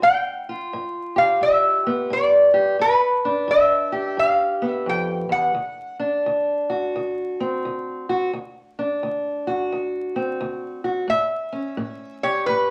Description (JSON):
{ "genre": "acoustic country blues, solo or duo", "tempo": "87 BPM", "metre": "4/4", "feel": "swing 63% on 8ths", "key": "D mixolydian", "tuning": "A4 = 436 Hz", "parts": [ { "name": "lap resonator guitar", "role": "melody", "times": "0.0-6.0, 11.1-12.7 s", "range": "B4 to G5", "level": "-20 LUFS", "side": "equal", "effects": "none" }, { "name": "fingerpicked steel-string acoustic guitar", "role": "accompaniment", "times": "0.0-12.7 s", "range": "D2 to G4", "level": "-27 LUFS", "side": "equal", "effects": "none" } ], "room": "wet studio reverb, RT60 0.7 s", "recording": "vinyl crackle", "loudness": "-22 LUFS", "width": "mono", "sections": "0.0-12.7 A section", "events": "none", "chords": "0.0 G7; 5.6 D7; 11.1 A7" }